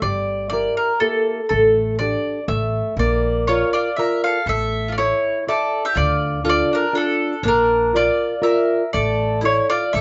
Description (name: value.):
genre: italian folk, Italian serenade.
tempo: 121 BPM.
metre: 3/4.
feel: straight.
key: unclear.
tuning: A4 = 439 Hz.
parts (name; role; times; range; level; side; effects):
mandolin; melody; 0.0-10.0 s; A4 to F5; -22 LUFS; equal; none.
nylon-string guitar; accompaniment; 0.0-10.0 s; D3 to E5; -24 LUFS; equal; none.
upright bass; bass; 0.0-10.0 s; G1 to D2; -27 LUFS; equal; none.
bowl-back mandolin; second line; 3.5-10.0 s; D4 to Bb4; -28 LUFS; equal; none.
room: moderate small room reverb, RT60 0.6 s.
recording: band playing live in one room, nothing above 7.8 kHz.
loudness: -19 LUFS.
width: mono.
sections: 0.0-10.0 A section.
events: none.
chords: 0.0 Edim/G; 1.5 A7sus4; 2.5 A5; 3.0 Bb; 4.5 A; 6.0 Dm; 7.4 Bb; 8.9 Asus4.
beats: | 0.01 0.51 1.00 | 1.49 1.98 2.47 | 2.97 3.46 3.96 | 4.46 4.96 5.46 | 5.96 6.45 6.95 | 7.44 7.93 8.43 | 8.93 9.43 9.93.